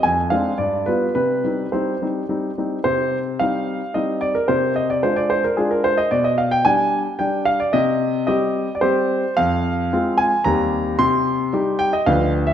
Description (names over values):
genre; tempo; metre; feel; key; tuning
classical-period piano sonatina; 111 BPM; 3/4; straight; C minor; A4 = 440 Hz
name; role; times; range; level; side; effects
warm concert grand piano; solo; 0.0-12.5 s; D2 to C6; -17 LUFS; equal; none
room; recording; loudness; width
wet recital hall reverb, RT60 1.7 s; none; -17 LUFS; side -9 dB against mid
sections
0.0-2.9 A section; 2.9-12.5 A section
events
none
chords
0.0 Dm7b5/F; 0.6 G7; 1.2 Cm; 4.5 Dm7b5/C; 6.1 G/B; 7.7 Cm; 9.4 Fm; 10.5 Cm/Eb; 11.0 Cm